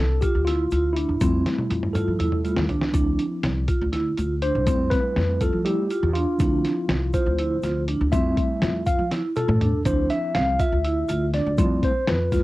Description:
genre	progressive instrumental, band music in an uneven meter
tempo	243 BPM (eighths)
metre	7/8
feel	straight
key	F lydian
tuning	A4 = 440 Hz
part	bright tine electric piano	accompaniment	0.0-12.4 s	F3 to F5	-25 LUFS	left 1 dB	medium stereo tremolo, cassette tape
part	upright bass	bass	0.0-12.4 s	C2 to F3	-25 LUFS	equal	none
part	vibraphone with medium mallets	arpeggios	0.2-12.4 s	C4 to F4	-26 LUFS	right 3 dB	cassette tape, analog delay
part	lo-fi sampler-style drum kit	drums	0.2-12.4 s	hi-hat, kick drum, snare drum, toms	-25 LUFS	equal	cassette tape
part	egg shaker	percussion	0.2-12.4 s	none	-49 LUFS	left 4 dB	none
room	light reverb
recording	home recording on cassette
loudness	-20 LUFS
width	side -18 dB against mid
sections	0.0-12.4 A section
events	tine electric piano solo 0.0-12.4; drum fill 1.5-2.9, 9.1-9.9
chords	0.0 Dm9; 1.2 Fmaj7; 2.9 Dm9; 4.7 Fmaj7; 6.4 Dm9; 8.1 Fmaj7; 9.9 Dm9; 11.6 Fmaj7

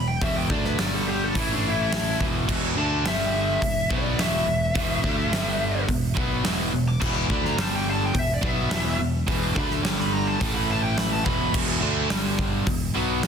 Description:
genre	hard rock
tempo	106 BPM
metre	4/4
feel	straight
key	E minor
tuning	A4 = 440 Hz
part	bluesy overdriven lead guitar	melody	0.0-11.5 s	D4 to D6	-28 LUFS	left 1 dB	distortion, tape echo
part	cranked stack guitar	riff	0.0-13.3 s	E2 to D4	-29 LUFS	right 10 dB	overdrive
part	distorted electric guitar	riff	0.0-13.3 s	E2 to D4	-30 LUFS	left 14 dB	distortion
part	picked electric bass	bass	0.0-13.3 s	E1 to D2	-29 LUFS	equal	none
part	huge arena drum kit	drums	0.2-13.3 s	crash cymbal, hi-hat, kick drum, snare drum	-27 LUFS	equal	none
part	overdriven electric guitar	riff	2.5-13.3 s	E2 to D4	-32 LUFS	equal	none
room	little or no reverb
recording	dense, heavily limited modern master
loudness	-21 LUFS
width	side -7 dB against mid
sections	0.0-11.5 A section; 11.5-13.3 B section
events	lead electric guitar solo 0.0-11.5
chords	0.0 Em; 0.8 G5; 1.3 A5; 2.2 E5; 3.0 G5; 3.6 E5; 5.3 G5; 5.9 E5; 7.6 G5; 8.1 E5; 9.8 G5; 10.4 A5; 11.3 E5; 12.1 G5; 12.7 E5

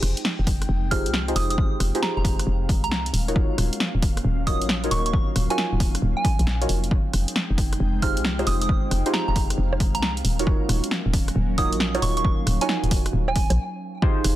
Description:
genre	UK garage, two-step garage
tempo	135 BPM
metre	4/4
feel	swing 66% on 16ths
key	unclear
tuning	A4 = 440 Hz
part	airy breathy pad	sustained chords	0.1-14.4 s	Gb3 to G5	-35 LUFS	equal	chorus, sidechain pumping
part	deep mellow chord stab	stabs	0.0-14.4 s	Eb4 to Db5	-29 LUFS	right 1 dB	chorus, digital delay
part	hollow knocking FM bass	bass	0.0-14.4 s	Eb1 to C2	-24 LUFS	equal	none
part	punchy analog drum machine	drums	0.0-14.4 s	bongos, hi-hat, rim click, snare drum	-27 LUFS	equal	overdrive
part	warbly tape-like pad	texture	0.0-14.4 s	Gb3 to G5	-36 LUFS	right 1 dB	chorus, built-in reverb, sidechain pumping
part	electronic kick drum	drums	0.5-14.1 s	none	-22 LUFS	equal	overdrive
part	soft synth bell	melody	0.9-13.6 s	Ab5 to F6	-29 LUFS	right 4 dB	chorus, digital delay
room	digital ambience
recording	dense, heavily limited modern master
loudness	-20 LUFS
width	side -14 dB against mid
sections	0.0-14.0 A section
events	fade-in on ambient pad 0.0-14.0; stop 13.6-14.0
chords	0.0 Fm9; 3.4 Ebm9; 6.9 Fm9; 10.5 Ebm9

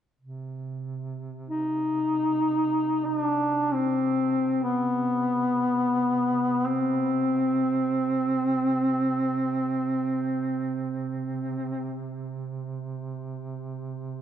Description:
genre	caucasian folk, Caucasian lament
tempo	free time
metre	none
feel	none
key	C harmonic minor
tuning	A4 = 440 Hz
part	mellow duduk	drone	0.2-14.2 s	C3	-36 LUFS	right 4 dB	none
part	mellow duduk	melody	1.5-12.0 s	B3 to Eb4	-24 LUFS	equal	none
room	moderate church reverb, RT60 3.0 s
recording	dark, warm production, nothing above 10.5 kHz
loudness	-24 LUFS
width	side -10 dB against mid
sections	0.2-14.2 A section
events	none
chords	none

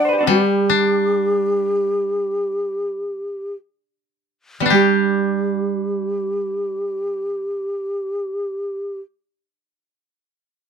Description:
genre	japanese traditional, Japanese chamber music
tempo	free time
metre	none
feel	none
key	unclear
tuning	A4 = 444 Hz
part	breathy mellow long shakuhachi	melody	0.0-9.0 s	G4 to D5	-21 LUFS	left 1 dB	none
part	vintage hollow-body jazz guitar	second line	0.0-9.0 s	G3 to D5	-22 LUFS	right 7 dB	none
part	koto	accompaniment	0.3-9.0 s	G3 to G4	-21 LUFS	left 4 dB	none
room	little or no reverb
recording	close, detailed microphones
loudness	-18 LUFS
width	side -7 dB against mid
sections	0.0-4.7 A section; 4.7-9.3 B section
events	slowing down 0.0-4.7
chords	none

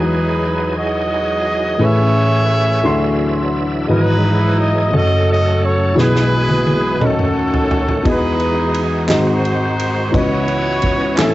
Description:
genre	slow gospel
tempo	58 BPM (dotted quarters)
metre	6/8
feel	straight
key	E major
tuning	A4 = 441 Hz
part	warm horn section	melody	0.0-11.3 s	C#4 to E5	-18 LUFS	right 1 dB	cassette tape
part	dark concert grand piano	accompaniment	0.0-11.3 s	F#1 to C6	-16 LUFS	left 1 dB	cassette tape
part	bright tonewheel organ	sustained chords	0.0-11.3 s	G#2 to E5	-22 LUFS	right 1 dB	fast rotary speaker, overdrive, chorus vibrato, cassette tape
part	natural country drum kit	drums	6.0-11.3 s	kick drum, ride cymbal, snare drum, toms	-21 LUFS	right 1 dB	cassette tape
part	group handclap	percussion	9.1-11.3 s	none	-24 LUFS	right 3 dB	none
room	light reverb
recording	home recording on cassette, nothing above 7.9 kHz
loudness	-13 LUFS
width	side -16 dB against mid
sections	0.0-11.3 A section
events	drum fill 6.0-8.1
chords	0.0 Emaj9; 1.8 Amaj9; 2.8 D9; 3.9 Emaj9/G#; 4.9 F#m; 6.0 E/B; 7.0 D#m7b5; 8.1 Emaj9; 9.1 G#7; 10.1 C#m11

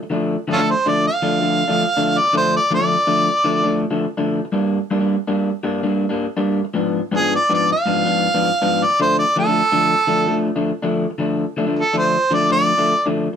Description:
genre	blues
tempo	108 BPM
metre	4/4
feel	swing 67% on 8ths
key	D minor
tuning	A4 = 441 Hz
part	electric guitar through a small old amp	riff	0.0-13.4 s	G2 to D4	-19 LUFS	left 2 dB	none
part	bright harmonica	melody	0.5-3.8, 7.2-13.0 s	C#4 to F5	-16 LUFS	right 2 dB	overdrive
room	light reverb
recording	band playing live in one room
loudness	-16 LUFS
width	side -8 dB against mid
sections	0.0-13.4 A section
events	none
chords	0.0 Dm; 4.5 Gm; 6.8 G#dim7; 9.0 Dm

